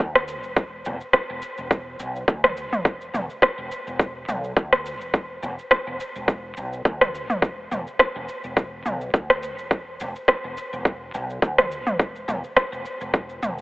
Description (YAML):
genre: organic downtempo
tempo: 105 BPM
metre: 4/4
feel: swing 54% on 16ths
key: unclear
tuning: A4 = 445 Hz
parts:
  - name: mellow fretless electric bass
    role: bass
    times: 0.0-13.6 s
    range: E1 to D2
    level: -34 LUFS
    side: equal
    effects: tube saturation, ensemble chorus
  - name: deep house drum kit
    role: drums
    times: 0.0-13.6 s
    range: rim click, shaker, toms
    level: -22 LUFS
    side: equal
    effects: overdrive
  - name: electronic kick drum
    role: drums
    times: 0.0-13.3 s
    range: none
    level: -20 LUFS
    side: equal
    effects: overdrive
room: moderate huge ambient reverb, RT60 5.6 s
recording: telephone sound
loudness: -22 LUFS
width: side -22 dB against mid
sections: 0.0-13.6 A section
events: none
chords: none